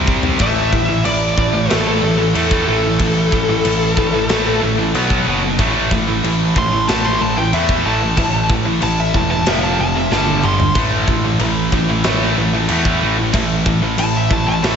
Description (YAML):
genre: heavy metal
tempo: 93 BPM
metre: 4/4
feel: straight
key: A minor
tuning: A4 = 440 Hz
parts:
  - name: heavy high-gain guitar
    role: riff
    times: 0.0-14.8 s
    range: F2 to C4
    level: -21 LUFS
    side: left 9 dB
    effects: distortion, slapback echo
  - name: heavy high-gain guitar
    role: riff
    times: 0.0-14.8 s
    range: F2 to C4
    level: -22 LUFS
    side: right 1 dB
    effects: distortion, slapback echo
  - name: tight distorted guitar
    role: riff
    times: 0.0-14.8 s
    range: F2 to C4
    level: -21 LUFS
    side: right 8 dB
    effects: distortion
  - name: fuzz picked electric bass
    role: bass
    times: 0.0-14.8 s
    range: E1 to E2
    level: -21 LUFS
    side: equal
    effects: overdrive
  - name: tight metal drum kit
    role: drums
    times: 0.1-14.8 s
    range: crash cymbal, kick drum, snare drum, toms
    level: -20 LUFS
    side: equal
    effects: none
  - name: high-gain lead guitar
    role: melody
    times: 0.4-14.8 s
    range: A4 to C6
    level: -20 LUFS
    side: left 2 dB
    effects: distortion, slapback echo, digital delay
room: moderate lush hall reverb, RT60 2.4 s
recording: big arena sound, nothing above 7.8 kHz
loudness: -13 LUFS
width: side -7 dB against mid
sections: 0.4-14.8 A section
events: drum fill 0.0-0.4, 10.1-10.8; lead electric guitar solo 0.4-14.8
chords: 0.4 A5; 4.9 B5; 5.6 A5; 9.5 F5; 10.1 G5; 10.8 A5